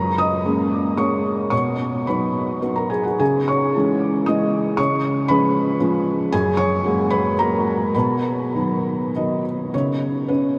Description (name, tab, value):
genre	neoclassical minimalist piano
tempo	99-121 BPM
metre	3/4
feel	rubato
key	unclear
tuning	A4 = 441 Hz
part	felt-muted upright piano	solo	0.0-10.6 s	F#2 to D#6	-20 LUFS	equal	subtle chorus, diffuse ambient delay
room	wet huge ambient reverb, RT60 8.0 s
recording	dreamy mix soaked in reverb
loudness	-20 LUFS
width	mono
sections	0.0-9.7 A section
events	none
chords	0.0 F#add9; 1.5 B; 3.2 C#m; 4.8 C#7; 6.3 F#add9; 7.9 B; 9.7 N.C.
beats	0.44 0.97 | 1.52 2.08 2.63 | 3.20 3.76 4.28 | 4.78 5.29 5.80 | 6.32 6.84 7.38 | 7.94 8.54 9.14 | 9.73 10.28